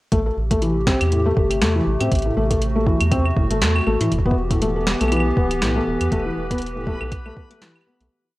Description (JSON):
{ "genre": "IDM", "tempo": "120 BPM", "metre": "4/4", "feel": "swing 56% on 16ths", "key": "A dorian", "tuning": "A4 = 440 Hz", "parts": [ { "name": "warbly tape-like pad", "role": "sustained chords", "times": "0.4-8.1 s", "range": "C3 to G4", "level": "-25 LUFS", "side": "equal", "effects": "chorus, built-in reverb" }, { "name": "felt-muted upright piano", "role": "arpeggios", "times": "0.1-8.1 s", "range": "A2 to A4", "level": "-23 LUFS", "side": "left 1 dB", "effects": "tape echo" }, { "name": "round analog bass", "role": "bass", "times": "0.1-8.1 s", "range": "D1 to A2", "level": "-23 LUFS", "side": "equal", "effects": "none" }, { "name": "booming analog drum machine", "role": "drums", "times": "0.1-8.1 s", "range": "claves, hi-hat, snare drum", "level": "-24 LUFS", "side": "equal", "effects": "none" }, { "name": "electronic kick drum", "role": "drums", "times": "0.1-7.5 s", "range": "none", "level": "-22 LUFS", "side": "equal", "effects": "overdrive" }, { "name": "backwards swelling texture", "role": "texture", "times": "4.8-8.1 s", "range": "B4", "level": "-37 LUFS", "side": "right 2 dB", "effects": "built-in reverb" } ], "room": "light reverb, digital ambience", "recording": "worn, warbling old tape, cassette tape, warbly pitch drift", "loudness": "-17 LUFS", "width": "side -18 dB against mid", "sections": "0.1-8.1 groove", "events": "fade-out 5.5-8.1", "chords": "0.1 Am7; 4.1 Em" }